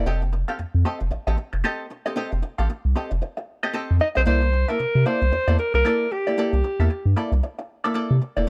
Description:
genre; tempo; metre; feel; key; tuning
funk; 114 BPM; 4/4; swing 60% on 16ths; C mixolydian; A4 = 440 Hz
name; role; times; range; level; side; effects
vintage hollow-body jazz guitar; accompaniment; 0.0-8.5 s; Bb3 to F5; -28 LUFS; equal; wah
round analog bass; bass; 0.0-8.5 s; E1 to C3; -23 LUFS; equal; none
breathy alto saxophone; melody; 4.0-7.2 s; G4 to Eb5; -25 LUFS; equal; none
room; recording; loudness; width
small room ambience; none; -23 LUFS; mono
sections
0.0-8.5 A section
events
none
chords
0.1 F9; 4.3 C13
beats
| 0.06 0.58 1.11 1.64 | 2.16 2.69 3.22 3.74 | 4.27 4.79 5.32 5.85 | 6.37 6.90 7.42 7.95 | 8.47

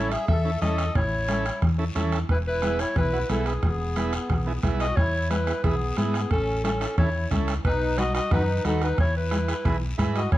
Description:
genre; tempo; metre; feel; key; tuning
latin, cumbia; 179 BPM; 4/4; straight; E major; A4 = 440 Hz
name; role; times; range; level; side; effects
warm clarinet; melody; 0.0-10.4 s; G#4 to E5; -28 LUFS; left 1 dB; none
accordion; second line; 0.0-10.4 s; B3 to A4; -33 LUFS; left 2 dB; light tremolo tuning
overdriven combo organ; accompaniment; 0.0-10.2 s; B3 to B4; -32 LUFS; right 4 dB; none
hollow-body short-scale fingered electric bass; bass; 0.0-10.4 s; E1 to G#2; -27 LUFS; equal; none
bombo; percussion; 0.1-10.4 s; none; -28 LUFS; right 1 dB; none
guiro; percussion; 0.1-10.4 s; none; -42 LUFS; left 5 dB; none
congas; percussion; 0.3-10.4 s; none; -32 LUFS; left 1 dB; none
room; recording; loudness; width
light reverb; dark, warm production; -22 LUFS; side -15 dB against mid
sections
0.0-5.0 A section; 5.0-10.4 B section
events
none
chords
0.0 A; 2.3 E; 6.3 A; 7.6 B; 9.0 E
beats
0.28 0.62 | 0.95 1.29 1.62 1.96 | 2.29 2.63 2.96 3.30 | 3.63 3.97 4.30 4.64 | 4.97 5.30 5.64 5.97 | 6.31 6.64 6.98 7.31 | 7.65 7.98 8.31 8.65 | 8.98 9.32 9.65 9.99 | 10.32

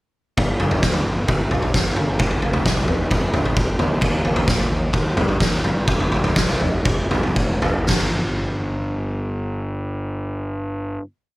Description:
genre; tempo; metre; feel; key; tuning
quiet-loud alternative rock; 112-132 BPM; 4/4; straight; unclear; A4 = 440 Hz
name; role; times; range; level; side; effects
fuzz picked electric bass; bass; 0.4-11.0 s; F1 to Bb2; -24 LUFS; equal; overdrive
oversized low-tuned drum kit; drums; 0.4-8.0 s; kick drum, snare drum, toms; -18 LUFS; equal; none
room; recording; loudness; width
little or no reverb; none; -18 LUFS; side -19 dB against mid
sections
0.4-7.9 verse; 7.9-11.4 final note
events
slowing down 4.0-7.9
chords
none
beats
| 0.38 0.83 1.29 1.75 | 2.20 2.66 3.11 3.57 | 4.02 4.48 4.94 5.40 | 5.88 6.36 6.86 7.37 | 7.89 8.43 8.96 9.49 | 10.03 10.57

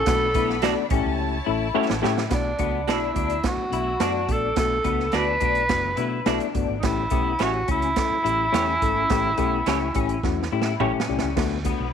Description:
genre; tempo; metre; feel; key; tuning
uptempo 1960s-style soul; 106 BPM; 4/4; straight; unclear; A4 = 438 Hz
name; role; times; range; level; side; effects
breathy tenor saxophone; melody; 0.0-10.8 s; D4 to B4; -24 LUFS; right 2 dB; none
vibraphone with soft mallets; second line; 0.0-0.9 s; A5; -40 LUFS; right 19 dB; none
warm studio violin section; second line; 0.0-2.3 s; E4 to B5; -33 LUFS; equal; none
electric guitar through a small old amp; riff; 0.0-11.9 s; B3 to E4; -30 LUFS; left 11 dB; ensemble chorus
vintage muted fingered electric bass; bass; 0.0-11.9 s; F#1 to B2; -30 LUFS; right 1 dB; none
reed electric piano; accompaniment; 0.1-11.9 s; A3 to A5; -27 LUFS; left 12 dB; none
swinging big-band drum kit; drums; 0.1-11.8 s; crash cymbal, hi-hat, kick drum, snare drum, toms; -27 LUFS; right 4 dB; none
electric guitar through a small old amp; stabs; 0.6-10.9 s; E4 to D5; -28 LUFS; right 14 dB; none
room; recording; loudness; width
light reverb, small room ambience; 1960s-style stereo with parts hard left and right; -20 LUFS; side -8 dB against mid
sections
0.0-2.3 A section; 2.3-11.4 B section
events
drum fill 1.2-2.3, 10.2-11.4; reed electric piano fill 10.5-11.4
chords
0.1 Bm7; 0.9 A7; 2.3 Bm7; 6.8 A7; 11.4 D6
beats
| 0.07 0.63 1.19 1.75 | 2.32 2.88 3.44 4.01 | 4.57 5.14 5.70 6.27 | 6.84 7.40 7.97 8.54 | 9.10 9.67 10.24 10.80 | 11.37

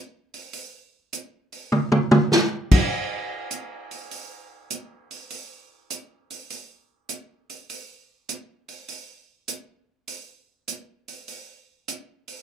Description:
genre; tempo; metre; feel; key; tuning
jazz; 100 BPM; 4/4; swing 67% on 8ths; none; none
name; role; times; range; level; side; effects
swinging big-band drum kit; drums; 0.3-12.4 s; crash cymbal, hi-hat, kick drum, snare drum, toms; -22 LUFS; equal; none
room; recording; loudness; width
light reverb; minimal, uncompressed stereo recording; -24 LUFS; side -8 dB against mid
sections
0.0-12.4 A section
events
drum fill 1.7-2.3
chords
none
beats
| 0.54 1.13 1.73 2.32 | 2.92 3.51 4.11 4.71 | 5.30 5.90 6.50 7.09 | 7.69 8.29 8.89 9.49 | 10.09 10.68 11.28 11.88

